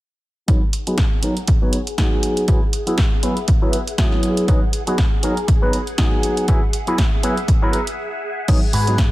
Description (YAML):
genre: filtered disco house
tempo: 120 BPM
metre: 4/4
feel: swing 56% on 16ths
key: G# minor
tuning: A4 = 440 Hz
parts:
  - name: barky tine electric piano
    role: accompaniment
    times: 0.5-9.0 s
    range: F#3 to B4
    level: -23 LUFS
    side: equal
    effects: phaser, sidechain pumping, low-pass filter
  - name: phased string machine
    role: sustained chords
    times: 1.1-9.1 s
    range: G#4 to B5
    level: -29 LUFS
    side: left 1 dB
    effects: ensemble chorus, phaser, vintage 12-bit sampler grit, sidechain pumping, low-pass filter
  - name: electric guitar with an envelope filter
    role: riff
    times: 0.5-9.0 s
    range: E4 to C#5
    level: -28 LUFS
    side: left 1 dB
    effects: sidechain pumping, low-pass filter
  - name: electronic kick drum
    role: drums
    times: 0.5-9.1 s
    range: none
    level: -17 LUFS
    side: equal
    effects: none
  - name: punchy analog drum machine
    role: drums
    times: 0.5-9.1 s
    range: crash cymbal, hi-hat, snare drum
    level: -26 LUFS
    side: right 1 dB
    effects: none
  - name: hollow-body short-scale fingered electric bass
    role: bass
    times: 8.7-9.1 s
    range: G#2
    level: -18 LUFS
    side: equal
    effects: tube saturation, sidechain pumping, low-pass filter
room: digital ambience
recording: none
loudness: -16 LUFS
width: side -17 dB against mid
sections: 0.5-8.5 A section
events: filter sweep 0.5-8.5; break 8.0-8.5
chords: 0.5 G#m7; 2.5 F#9sus4; 4.5 G#m7; 6.5 F#9sus4; 8.5 G#m7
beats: | 0.48 0.98 1.48 1.98 | 2.48 2.98 3.48 3.98 | 4.48 4.98 5.48 5.98 | 6.48 6.98 7.48 7.98 | 8.48 8.98